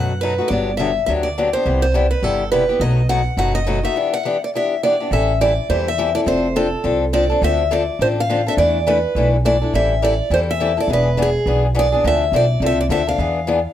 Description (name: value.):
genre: acoustic string swing (jazz manouche).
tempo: 208 BPM.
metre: 4/4.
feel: swing 59% on 8ths.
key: E minor, A minor from 5.1 s.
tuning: A4 = 440 Hz.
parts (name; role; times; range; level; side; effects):
picked steel-string acoustic guitar; melody; 0.0-13.7 s; G#4 to F#5; -20 LUFS; right 1 dB; slapback echo, plate reverb.
picked steel-string acoustic guitar; accompaniment; 0.0-13.6 s; B2 to A4; -20 LUFS; left 4 dB; none.
upright bass; bass; 0.0-13.7 s; E1 to F#2; -20 LUFS; right 1 dB; none.
room: light reverb.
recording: none.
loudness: -15 LUFS.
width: side -11 dB against mid.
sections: 0.0-5.1 A section; 5.1-13.7 B section.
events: none.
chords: 0.0 B7; 0.5 Gmaj7; 1.7 Cmaj7; 2.8 B7; 4.0 Em9; 5.1 Am7; 6.3 F6; 7.4 Dm7; 8.6 E7sus4; 9.7 Am7; 10.9 E7; 12.0 Dm9; 13.2 E7b9.